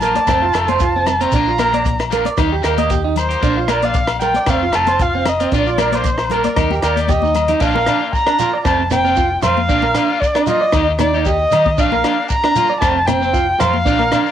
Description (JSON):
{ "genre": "highlife guitar band", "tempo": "115 BPM", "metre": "4/4", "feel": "straight", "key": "Bb major", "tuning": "A4 = 440 Hz", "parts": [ { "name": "dark erhu", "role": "melody", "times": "0.0-14.3 s", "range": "Bb4 to Bb5", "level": "-17 LUFS", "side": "left 1 dB", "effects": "cassette tape" }, { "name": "electric guitar at the edge of break-up", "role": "accompaniment", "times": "0.0-14.3 s", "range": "Eb3 to G4", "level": "-25 LUFS", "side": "left 10 dB", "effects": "cassette tape" }, { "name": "electric guitar at the edge of break-up", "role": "arpeggios", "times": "0.0-14.2 s", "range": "C4 to Eb5", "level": "-19 LUFS", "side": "right 7 dB", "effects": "cassette tape" }, { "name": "hollow-body short-scale fingered electric bass", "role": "bass", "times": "0.0-14.1 s", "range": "F1 to Eb3", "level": "-23 LUFS", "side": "left 1 dB", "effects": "none" }, { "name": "compact cocktail drum kit", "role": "drums", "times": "0.0-14.2 s", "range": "crash cymbal, hi-hat, kick drum, rim click", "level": "-21 LUFS", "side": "left 1 dB", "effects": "none" }, { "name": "congas", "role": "percussion", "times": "0.0-14.1 s", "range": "none", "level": "-26 LUFS", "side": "left 14 dB", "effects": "none" }, { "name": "shekere", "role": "percussion", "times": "0.0-14.3 s", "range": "none", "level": "-29 LUFS", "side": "right 6 dB", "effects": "none" }, { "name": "agogo bells", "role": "percussion", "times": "0.3-14.3 s", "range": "none", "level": "-26 LUFS", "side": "left 10 dB", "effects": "none" } ], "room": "moderate studio reverb, RT60 0.6 s", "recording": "home recording on cassette", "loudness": "-13 LUFS", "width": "side -10 dB against mid", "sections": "0.0-7.6 A section; 7.6-14.3 B section", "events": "drum fill 7.0-7.6", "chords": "0.3 F; 1.3 Bb; 2.4 Eb; 3.4 Bb; 4.5 F; 5.5 Bb; 6.6 Eb; 7.6 Bb; 8.7 F; 9.7 Bb; 10.7 Eb; 11.8 Bb; 12.8 F" }